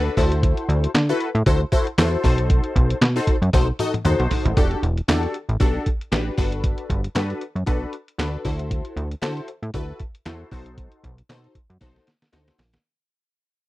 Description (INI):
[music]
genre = early-eighties boogie funk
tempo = 116 BPM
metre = 4/4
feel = swing 56% on 16ths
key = unclear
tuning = A4 = 442 Hz
[part]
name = funky polysynth comp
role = accompaniment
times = 0.0-12.6 s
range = D4 to D#5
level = -25 LUFS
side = left 2 dB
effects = chorus
[part]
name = plucky analog bass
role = bass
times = 0.0-12.8 s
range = E1 to D3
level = -22 LUFS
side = equal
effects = none
[part]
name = lo-fi sampler-style drum kit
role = drums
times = 0.2-12.8 s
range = handclaps, hi-hat, kick drum, snare drum, toms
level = -21 LUFS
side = equal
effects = none
[sound]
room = little or no reverb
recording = dry, close 1970s-style studio recording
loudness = -19 LUFS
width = side -17 dB against mid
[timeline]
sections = 0.0-4.6 A section; 4.6-12.8 B section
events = drum fill 3.5-4.6, 11.8-12.8; fade-out 4.6-12.8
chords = 0.2 D9; 2.2 B7b9; 4.6 Em11; 6.4 Gmaj7; 8.4 D9; 10.5 B7b9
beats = | 0.43 0.95 1.47 1.98 | 2.50 3.02 3.54 4.05 | 4.57 5.09 5.60 6.12 | 6.64 7.16 7.67 8.19 | 8.71 9.22 9.74 10.26 | 10.78 11.29 11.81 12.33